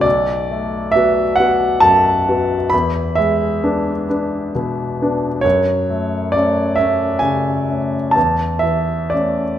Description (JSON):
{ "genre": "classical, romantic nocturne for solo piano", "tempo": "39-47 BPM (dotted quarters)", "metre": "12/8", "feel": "rubato", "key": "unclear", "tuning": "A4 = 440 Hz", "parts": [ { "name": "clear grand piano", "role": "solo", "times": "0.0-9.6 s", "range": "B1 to B5", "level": "-14 LUFS", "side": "equal", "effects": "none" } ], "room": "wet recital hall reverb, RT60 1.4 s", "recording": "minimal, uncompressed stereo recording", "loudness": "-15 LUFS", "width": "side -11 dB against mid", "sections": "0.0-9.6 A section", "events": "none", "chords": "0.0 Bm7; 2.7 E7; 5.4 F#m; 8.2 A/E", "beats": "| 0.05 1.39 2.73 4.09 | 5.44 6.78 8.16" }